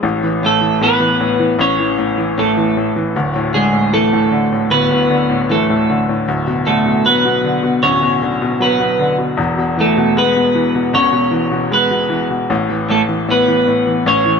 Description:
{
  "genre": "pop",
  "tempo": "77 BPM",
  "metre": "4/4",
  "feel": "straight",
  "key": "A major",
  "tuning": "A4 = 440 Hz",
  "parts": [
    { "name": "bright grand piano", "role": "accompaniment", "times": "0.0-14.4 s", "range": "D1 to G#3", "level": "-17 LUFS", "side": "left 2 dB", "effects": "none" },
    { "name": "clean electric guitar", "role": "melody", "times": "0.4-14.4 s", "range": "G#3 to C#5", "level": "-14 LUFS", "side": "right 1 dB", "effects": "wide subtle chorus" }
  ],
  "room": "moderate lush hall reverb, RT60 2.2 s",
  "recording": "none",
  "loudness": "-12 LUFS",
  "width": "side -6 dB against mid",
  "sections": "0.0-14.4 A section",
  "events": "none",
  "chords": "0.0 A; 3.1 Dsus2; 6.3 Bm/D; 9.4 E; 12.5 A"
}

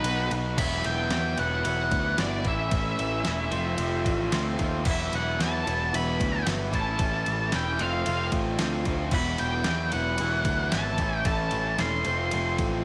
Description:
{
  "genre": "indie rock",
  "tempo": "112 BPM",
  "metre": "4/4",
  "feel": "straight",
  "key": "unclear",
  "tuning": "A4 = 438 Hz",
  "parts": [
    { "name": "octave-fuzz lead guitar", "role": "melody", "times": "0.0-12.6 s", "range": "B4 to C6", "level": "-32 LUFS", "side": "equal", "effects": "distortion, slapback echo" },
    { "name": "raw garage guitar", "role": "riff", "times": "0.0-12.8 s", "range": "A2 to B4", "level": "-32 LUFS", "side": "equal", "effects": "overdrive" },
    { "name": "picked electric bass", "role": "bass", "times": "0.0-12.8 s", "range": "E1 to E2", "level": "-33 LUFS", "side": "equal", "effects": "none" },
    { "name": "detuned 8-bit digital drum machine", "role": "drums", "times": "0.0-12.7 s", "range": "crash cymbal, kick drum, ride cymbal, snare drum", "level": "-34 LUFS", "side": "equal", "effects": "none" }
  ],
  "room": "light reverb, digital ambience",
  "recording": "none",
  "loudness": "-27 LUFS",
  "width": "mono",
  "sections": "0.6-12.8 A section",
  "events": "break 0.0-0.6",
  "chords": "0.0 B; 0.6 Esus2; 2.5 A; 3.5 F; 4.9 Esus2; 6.7 A; 7.8 F; 9.1 Esus2; 11.0 A; 12.1 F"
}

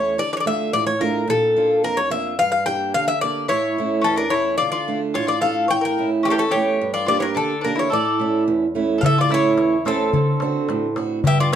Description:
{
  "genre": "greek folk, Greek bouzouki band",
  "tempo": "108 BPM",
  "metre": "2/4",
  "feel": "straight",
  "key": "D harmonic minor",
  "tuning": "A4 = 439 Hz",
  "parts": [
    { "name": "Greek bouzouki", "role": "melody", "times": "0.0-11.6 s", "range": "G4 to G5", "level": "-20 LUFS", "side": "left 2 dB", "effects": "none" },
    { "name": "picked old ladder-braced acoustic guitar", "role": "accompaniment", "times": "0.0-11.6 s", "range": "E2 to G4", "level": "-22 LUFS", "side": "right 4 dB", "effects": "none" },
    { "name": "mandolin", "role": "second line", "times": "3.5-11.5 s", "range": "Bb3 to C#5", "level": "-25 LUFS", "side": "left 2 dB", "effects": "none" },
    { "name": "darbuka", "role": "percussion", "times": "9.0-11.6 s", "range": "none", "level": "-21 LUFS", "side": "left 1 dB", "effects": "none" }
  ],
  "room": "wet studio reverb, RT60 0.6 s",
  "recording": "dark, warm production",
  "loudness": "-17 LUFS",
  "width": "side -9 dB against mid",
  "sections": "0.2-9.0 A section; 9.0-11.6 B section",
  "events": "none",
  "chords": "0.2 Dm; 1.3 Bb; 2.4 Gm; 3.5 A; 4.6 Dm; 5.7 A; 6.8 Gm; 7.9 A; 10.1 D7"
}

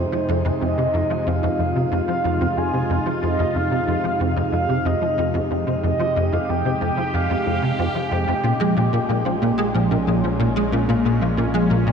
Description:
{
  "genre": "ambient, sequencer-driven space music",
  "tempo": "92 BPM",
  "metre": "4/4",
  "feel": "straight",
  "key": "F minor",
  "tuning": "A4 = 442 Hz",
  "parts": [
    { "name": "mellow horn-like synth lead", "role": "melody", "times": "0.0-9.1 s", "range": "C5 to Ab5", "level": "-25 LUFS", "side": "right 1 dB", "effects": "chorus, shimmer reverb, ping-pong delay" },
    { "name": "sweeping resonant pad", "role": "sustained chords", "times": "0.0-11.9 s", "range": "Bb2 to G4", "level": "-24 LUFS", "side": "equal", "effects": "chorus, shimmer reverb" },
    { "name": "tight sequencer bass", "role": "riff", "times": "0.0-11.9 s", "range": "F2 to Ab3", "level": "-22 LUFS", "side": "equal", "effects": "ensemble chorus, shimmer reverb, ping-pong delay" },
    { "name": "analog drone", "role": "bass", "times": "0.2-11.9 s", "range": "Bb1 to F2", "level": "-33 LUFS", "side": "equal", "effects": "chorus" },
    { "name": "soft round pluck", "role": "arpeggios", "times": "8.4-11.8 s", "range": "F3 to F4", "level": "-23 LUFS", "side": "equal", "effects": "chorus, auto-pan, shimmer reverb, ping-pong delay" }
  ],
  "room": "wet concert hall reverb, RT60 2.4 s",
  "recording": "dark, warm production",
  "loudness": "-18 LUFS",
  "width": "side -6 dB against mid",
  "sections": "0.0-11.9 A section",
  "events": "fade-in on synth drone 0.0-11.9",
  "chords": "0.0 Fm7; 8.4 Bbm7"
}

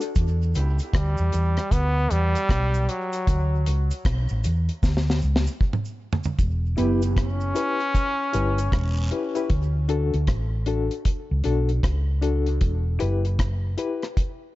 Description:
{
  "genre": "dub reggae",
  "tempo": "77 BPM",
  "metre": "4/4",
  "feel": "swing 62% on 16ths",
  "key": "E dorian",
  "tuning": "A4 = 439 Hz",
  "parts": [
    { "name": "deep reggae drum kit", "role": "drums", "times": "0.0-14.4 s", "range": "hi-hat, kick drum, rim click, snare drum, toms", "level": "-24 LUFS", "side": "equal", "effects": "none" },
    { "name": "cabasa and guiro", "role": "percussion", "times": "0.0-9.5 s", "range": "none", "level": "-44 LUFS", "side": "right 5 dB", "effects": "high-pass filter on perc, tape echo" },
    { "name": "hollow-body short-scale fingered electric bass", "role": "bass", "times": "0.2-13.8 s", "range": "E1 to E2", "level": "-22 LUFS", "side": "equal", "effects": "none" },
    { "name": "mellow electric guitar", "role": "accompaniment", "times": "0.6-0.8, 6.8-7.0 s", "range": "B3 to G4", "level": "-30 LUFS", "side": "right 4 dB", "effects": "warbly pitch drift, high-pass filter, tape echo" },
    { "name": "brilliant trombone", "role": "melody", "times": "0.9-9.5 s", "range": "F#3 to C#4", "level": "-27 LUFS", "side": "equal", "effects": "tape echo" },
    { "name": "reed electric piano", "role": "stabs", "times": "6.8-14.0 s", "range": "D4 to B4", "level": "-29 LUFS", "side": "left 6 dB", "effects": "overdrive, fast tremolo, high-pass filter, tape echo" }
  ],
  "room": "studio reverb",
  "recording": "dark, warm production, nothing above 7.7 kHz",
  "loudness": "-21 LUFS",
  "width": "side -17 dB against mid",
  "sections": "0.0-6.4 A section; 6.4-14.6 B section",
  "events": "filter sweep 0.0-6.4; drum fill 4.8-6.4; part muted 9.5-14.6",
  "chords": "0.2 Em; 3.3 D5; 6.4 Em; 9.5 D; 12.6 Em"
}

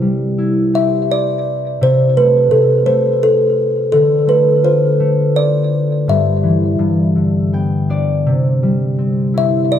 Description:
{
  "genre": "children's music, lullaby",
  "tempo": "83 BPM",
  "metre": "3/4",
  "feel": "rubato",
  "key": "C major",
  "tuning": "A4 = 440 Hz",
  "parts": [
    { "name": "concert harp", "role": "accompaniment", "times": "0.0-9.8 s", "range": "G2 to G5", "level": "-15 LUFS", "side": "left 1 dB", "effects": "none" },
    { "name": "kalimba", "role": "melody", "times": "0.8-9.8 s", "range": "A4 to E5", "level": "-14 LUFS", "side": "equal", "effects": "tape echo" }
  ],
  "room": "moderate recital hall reverb, RT60 1.6 s",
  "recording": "dark, warm production",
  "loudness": "-12 LUFS",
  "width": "side -9 dB against mid",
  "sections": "0.0-9.8 A section",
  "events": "harp fill 7.2-8.3",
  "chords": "0.0 C; 1.8 Am/C; 3.9 Dm; 6.1 Em/G; 6.8 G; 8.3 C"
}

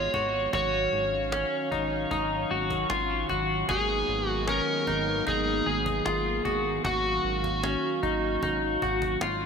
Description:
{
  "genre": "dream pop",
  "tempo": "76 BPM",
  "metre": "4/4",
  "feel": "straight",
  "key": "G# dorian",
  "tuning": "A4 = 440 Hz",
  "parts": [
    { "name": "overdriven slide guitar", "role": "melody", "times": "0.0-9.2 s", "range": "F#4 to C#5", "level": "-29 LUFS", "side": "right 2 dB", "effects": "digital delay" },
    { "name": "warm analog pad", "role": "sustained chords", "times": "0.0-9.5 s", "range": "D#3 to E#5", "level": "-34 LUFS", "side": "right 2 dB", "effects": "chorus" },
    { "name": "clean electric guitar", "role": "arpeggios", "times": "0.0-9.5 s", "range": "C#4 to G#4", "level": "-29 LUFS", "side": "left 3 dB", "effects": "wide subtle chorus, digital delay" },
    { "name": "chorused synth bass", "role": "bass", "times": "0.0-9.5 s", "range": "G#1", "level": "-34 LUFS", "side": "equal", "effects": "none" },
    { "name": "cajon", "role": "drums", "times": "0.1-9.4 s", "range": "none", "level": "-37 LUFS", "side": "equal", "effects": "none" }
  ],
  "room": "wet lush hall reverb, RT60 2.5 s",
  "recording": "bright 1980s-style digital production",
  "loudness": "-25 LUFS",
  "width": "side -6 dB against mid",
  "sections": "0.0-9.5 A section",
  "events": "none",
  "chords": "0.0 G#m7; 0.5 D#m9/G#; 3.7 G#m9; 6.8 D#m9/G#"
}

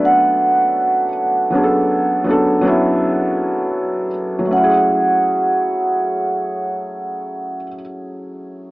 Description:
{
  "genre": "hip hop",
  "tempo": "80 BPM",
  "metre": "4/4",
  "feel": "swing 60% on 16ths",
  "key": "F# minor",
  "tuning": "A4 = 440 Hz",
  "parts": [
    { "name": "vibraphone with soft mallets", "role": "melody", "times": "0.0-7.7 s", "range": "F#5", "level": "-17 LUFS", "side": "right 2 dB", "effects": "low-pass filter, analog delay" },
    { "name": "felt-muted upright piano", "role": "accompaniment", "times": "0.0-8.7 s", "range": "F#3 to B4", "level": "-18 LUFS", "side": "equal", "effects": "low-pass filter" }
  ],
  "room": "moderate small room reverb, RT60 0.6 s",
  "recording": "cassette tape, small speaker sound",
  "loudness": "-14 LUFS",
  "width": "side -19 dB against mid",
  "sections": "0.0-4.5 A section; 4.5-7.5 B section",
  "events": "none",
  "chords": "0.0 Bm9; 4.5 F#m9"
}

